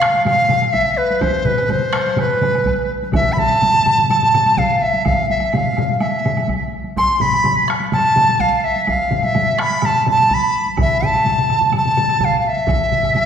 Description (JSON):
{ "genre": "japanese traditional, taiko drum ensemble", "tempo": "126 BPM", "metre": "4/4", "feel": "straight", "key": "E miyako bushi", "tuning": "A4 = 441 Hz", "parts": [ { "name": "bright large dizi", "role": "melody", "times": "0.0-13.3 s", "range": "B4 to C6", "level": "-15 LUFS", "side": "equal", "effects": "none" }, { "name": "solo taiko drums", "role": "percussion", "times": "0.0-13.3 s", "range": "none", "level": "-23 LUFS", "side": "left 3 dB", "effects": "none" }, { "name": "solo taiko drums", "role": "percussion", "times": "0.0-13.3 s", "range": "none", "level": "-25 LUFS", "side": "right 3 dB", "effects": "none" }, { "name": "woodblock", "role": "percussion", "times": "0.0-13.3 s", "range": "none", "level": "-33 LUFS", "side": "right 4 dB", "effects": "none" }, { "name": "solo taiko drums", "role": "percussion", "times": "0.1-13.3 s", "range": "none", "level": "-26 LUFS", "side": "equal", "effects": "none" }, { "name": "taiko ensemble", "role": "percussion", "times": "0.7-12.8 s", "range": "none", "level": "-25 LUFS", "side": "right 1 dB", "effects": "none" } ], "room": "wet scoring stage reverb, RT60 1.7 s", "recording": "recorded in a church or concert hall", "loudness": "-14 LUFS", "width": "side -8 dB against mid", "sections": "0.0-13.3 A section", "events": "none", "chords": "none", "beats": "0.26 0.74 | 1.22 1.70 2.18 2.66 | 3.14 3.62 4.10 4.58 | 5.05 5.53 6.01 6.49 | 6.97 7.44 7.92 8.40 | 8.88 9.35 9.83 10.30 | 10.78 11.26 11.73 12.21 | 12.68 13.16" }